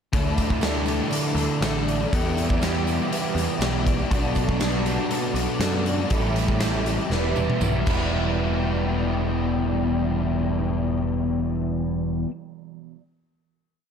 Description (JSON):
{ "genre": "rock, shoegaze and dream pop", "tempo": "120 BPM", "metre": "4/4", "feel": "straight", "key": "E minor", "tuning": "A4 = 440 Hz", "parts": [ { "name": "hollow soft pad", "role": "sustained chords", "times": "0.1-12.2 s", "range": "E4 to D6", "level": "-35 LUFS", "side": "right 4 dB", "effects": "chorus" }, { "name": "electric guitar through a small old amp", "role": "arpeggios", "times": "0.1-8.9 s", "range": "E4 to D5", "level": "-34 LUFS", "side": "right 5 dB", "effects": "wide subtle chorus, tape echo" }, { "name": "overdriven electric guitar", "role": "riff", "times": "0.1-12.3 s", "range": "A2 to A4", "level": "-26 LUFS", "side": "left 8 dB", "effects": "ensemble chorus" }, { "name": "overdriven semi-hollow guitar", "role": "riff", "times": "0.1-12.3 s", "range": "E2 to F#4", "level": "-29 LUFS", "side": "right 14 dB", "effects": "reverse reverb" }, { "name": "growling picked electric bass", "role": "bass", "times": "0.1-12.2 s", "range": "E1 to F#2", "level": "-27 LUFS", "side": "equal", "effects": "overdrive" }, { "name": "big rock drum kit", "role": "drums", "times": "0.1-8.0 s", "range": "crash cymbal, hi-hat, kick drum, snare drum, toms", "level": "-27 LUFS", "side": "equal", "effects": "none" }, { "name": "tambourine", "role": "percussion", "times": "0.4-8.3 s", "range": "none", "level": "-42 LUFS", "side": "right 17 dB", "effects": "none" } ], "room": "studio reverb", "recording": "dark, warm production", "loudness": "-21 LUFS", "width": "side -7 dB against mid", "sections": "0.1-8.1 A section; 8.1-12.1 final hit", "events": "drum fill 7.1-8.1", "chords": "0.1 Dsus2; 2.1 Em7; 4.1 Bm7; 6.1 A7sus4; 7.1 Em7" }